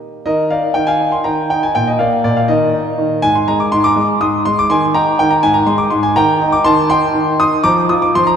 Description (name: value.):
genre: classical-period piano sonatina.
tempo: 81 BPM (dotted quarters).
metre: 6/8.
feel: rubato.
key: Eb major.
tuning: A4 = 440 Hz.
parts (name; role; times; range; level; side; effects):
clear concert grand piano; solo; 0.3-8.4 s; Ab2 to Eb6; -12 LUFS; equal; none.
room: wet church reverb, RT60 3.4 s.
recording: dark, warm production.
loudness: -12 LUFS.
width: side -7 dB against mid.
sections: 0.3-8.4 A section.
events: none.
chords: 0.3 Eb; 1.8 Bb; 2.5 Eb5; 3.2 Ab; 4.7 Eb; 5.4 N.C.; 6.2 Cm/Eb; 7.6 F7(no3).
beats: | 0.26 1.01 | 1.76 2.50 | 3.24 3.97 | 4.70 5.43 | 6.17 6.91 | 7.64.